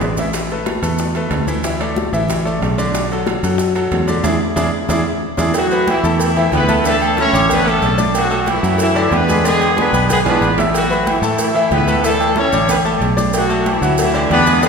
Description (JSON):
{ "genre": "latin, salsa", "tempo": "185 BPM", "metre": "4/4", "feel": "straight", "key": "A major", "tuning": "A4 = 440 Hz", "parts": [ { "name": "bright baby grand piano", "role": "accompaniment", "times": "0.0-14.7 s", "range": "D3 to E6", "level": "-19 LUFS", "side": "left 1 dB", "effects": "none" }, { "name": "fingered electric bass", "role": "bass", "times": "0.0-14.7 s", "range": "A1 to A2", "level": "-20 LUFS", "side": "right 1 dB", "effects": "none" }, { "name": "bongos and cowbell", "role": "percussion", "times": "0.0-14.7 s", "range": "none", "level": "-26 LUFS", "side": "left 2 dB", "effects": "none" }, { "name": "congas", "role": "percussion", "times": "0.0-14.7 s", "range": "none", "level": "-26 LUFS", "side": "right 1 dB", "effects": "none" }, { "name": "maracas", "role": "percussion", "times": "0.0-14.7 s", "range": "none", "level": "-30 LUFS", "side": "right 4 dB", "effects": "none" }, { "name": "timbales and agogo bells", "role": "percussion", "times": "0.0-14.7 s", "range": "none", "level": "-23 LUFS", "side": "right 3 dB", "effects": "none" }, { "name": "mellow horn section", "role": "melody", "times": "5.6-14.7 s", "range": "E3 to C#5", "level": "-16 LUFS", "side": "equal", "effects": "none" } ], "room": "wet scoring stage reverb, RT60 1.6 s", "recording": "recorded in a church or concert hall", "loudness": "-13 LUFS", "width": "side -5 dB against mid", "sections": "0.0-5.6 A section; 5.6-14.7 B section", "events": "drum fill 0.0-0.3, 5.1-5.6, 10.3-10.7; band accent 4.2-5.6", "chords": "0.3 Asus2; 2.9 Bm7; 4.2 E7; 5.6 Asus2; 6.8 Dsus2; 8.1 Bm7; 9.4 E7; 10.7 Asus2; 13.3 Bm7" }